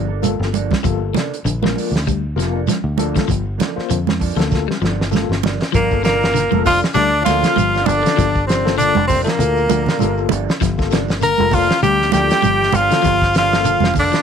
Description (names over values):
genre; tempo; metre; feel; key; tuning
afrobeat; 98 BPM; 4/4; swing 56% on 16ths; G minor; A4 = 441 Hz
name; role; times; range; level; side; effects
electric guitar at the edge of break-up; arpeggios; 0.0-14.2 s; C3 to G3; -24 LUFS; left 14 dB; none
mellow electric guitar; stabs; 0.0-14.2 s; F3 to A4; -28 LUFS; right 12 dB; analog chorus
fingered electric bass; bass; 0.0-14.1 s; F1 to F2; -21 LUFS; equal; none
overdriven tine electric piano; accompaniment; 0.2-13.8 s; Bb3 to C5; -25 LUFS; left 15 dB; medium tremolo
warm soul drum kit; drums; 0.2-14.2 s; hi-hat, kick drum, snare drum; -21 LUFS; equal; none
congas; percussion; 0.2-14.1 s; none; -21 LUFS; right 16 dB; none
shekere; percussion; 0.2-14.2 s; none; -26 LUFS; right 8 dB; none
edgy tenor saxophone; melody; 5.7-14.2 s; Bb3 to Bb4; -16 LUFS; left 1 dB; none
bright trumpet; second line; 5.7-14.2 s; Bb4 to Bb5; -24 LUFS; right 12 dB; none
warm bass trombone; second line; 5.7-14.2 s; Bb2 to Bb3; -27 LUFS; left 13 dB; none
room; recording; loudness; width
light reverb, small room ambience; 1960s-style stereo with parts hard left and right; -14 LUFS; side -7 dB against mid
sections
0.0-5.7 A section; 5.7-14.2 B section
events
drum fill 4.5-5.7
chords
0.0 Gm9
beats
0.24 | 0.85 1.46 2.07 2.68 | 3.29 3.90 4.51 5.12 | 5.74 6.34 6.95 7.56 | 8.17 8.78 9.39 10.00 | 10.61 11.22 11.83 12.44 | 13.04 13.65